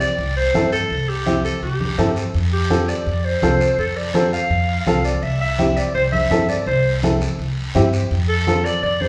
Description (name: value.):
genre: latin, cumbia.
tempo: 167 BPM.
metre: 4/4.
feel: straight.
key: C major.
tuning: A4 = 439 Hz.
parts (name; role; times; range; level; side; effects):
bright clarinet; second line; 0.0-9.1 s; G4 to F5; -23 LUFS; equal; none.
warm upright piano; accompaniment; 0.0-8.7 s; C4 to A4; -24 LUFS; equal; none.
upright bass; bass; 0.0-9.1 s; C2 to G2; -24 LUFS; equal; none.
guiro; percussion; 0.0-9.1 s; none; -34 LUFS; equal; none.
congas; percussion; 0.5-9.1 s; none; -28 LUFS; equal; none.
room: wet large studio reverb, RT60 1.3 s.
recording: band playing live in one room.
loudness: -19 LUFS.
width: mono.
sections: 0.0-9.1 A section.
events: clarinet solo 0.0-9.1.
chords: 0.0 C; 2.3 F; 5.2 C; 8.1 F.